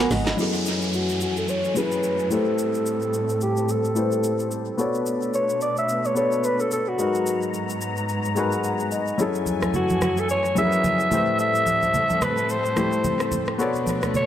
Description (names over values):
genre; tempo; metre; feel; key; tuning
amapiano; 109 BPM; 4/4; swing 58% on 16ths; F# minor; A4 = 439 Hz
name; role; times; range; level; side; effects
warm concert grand piano; accompaniment; 0.0-14.3 s; F#3 to B5; -25 LUFS; left 3 dB; low-pass filter, tape echo
warm studio string section; sustained chords; 0.0-14.3 s; F#2 to A#5; -28 LUFS; equal; low-pass filter
smooth R&B drum kit; drums; 0.1-14.3 s; hi-hat, rim click, shaker, snare drum; -32 LUFS; equal; tape echo
congas; percussion; 0.1-0.3, 9.5-14.3 s; none; -30 LUFS; right 2 dB; tape echo
downlifter; sound effects; 0.4-4.8 s; none; -33 LUFS; equal; none
growling alto saxophone; melody; 0.9-14.3 s; F#4 to E5; -24 LUFS; equal; low-pass filter, tape echo
room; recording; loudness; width
moderate echo chamber reverb, RT60 1.3 s, studio reverb; echo-heavy mix; -20 LUFS; side -10 dB against mid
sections
0.4-14.3 A section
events
grand piano fill 0.0-0.4, 8.1-9.2; drum fill 0.0-0.4; filter sweep 0.4-14.3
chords
0.4 F#m9; 2.3 Am9; 4.8 Bm9; 7.0 G#m9; 9.2 F#m9; 11.1 Am9; 13.6 Bm9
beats
| 0.38 0.93 1.49 2.04 | 2.59 3.14 3.69 4.24 | 4.79 5.34 5.89 6.44 | 6.99 7.54 8.09 8.64 | 9.19 9.74 10.29 10.84 | 11.39 11.94 12.49 13.04 | 13.60 14.14